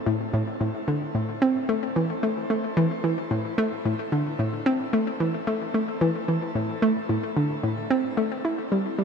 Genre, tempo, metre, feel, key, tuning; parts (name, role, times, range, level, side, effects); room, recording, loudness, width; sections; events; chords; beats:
ambient; 111 BPM; 4/4; straight; A minor; A4 = 440 Hz
hollow square pluck; solo; 0.1-9.0 s; A2 to E4; -23 LUFS; equal; chorus, ping-pong delay
wet shimmer reverb, RT60 8.0 s; -23 LUFS; side -6 dB against mid
0.0-9.0 A section
0.07 | 0.61 1.15 1.69 2.23 | 2.77 3.31 3.85 4.39 | 4.93 5.47 6.01 6.55 | 7.09 7.63 8.18 8.72